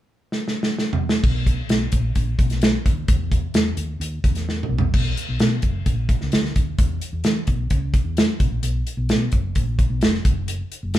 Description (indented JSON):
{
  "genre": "uptempo 1960s-style soul",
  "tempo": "130 BPM",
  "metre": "4/4",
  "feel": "straight",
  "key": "B major",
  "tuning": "A4 = 438 Hz",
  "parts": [
    { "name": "natural country drum kit", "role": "drums", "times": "0.3-11.0 s", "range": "crash cymbal, hi-hat, kick drum, snare drum, toms", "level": "-20 LUFS", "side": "equal", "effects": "none" },
    { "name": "hollow-body short-scale fingered electric bass", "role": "bass", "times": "1.2-11.0 s", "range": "E#1 to E3", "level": "-24 LUFS", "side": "equal", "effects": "none" }
  ],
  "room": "moderate studio reverb, RT60 0.8 s",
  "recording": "band playing live in one room",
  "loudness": "-19 LUFS",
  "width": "side -13 dB against mid",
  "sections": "0.0-1.2 A section; 1.2-4.9 B section; 4.9-11.0 C section",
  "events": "drum fill 0.3-1.2, 4.5-4.9",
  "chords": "none"
}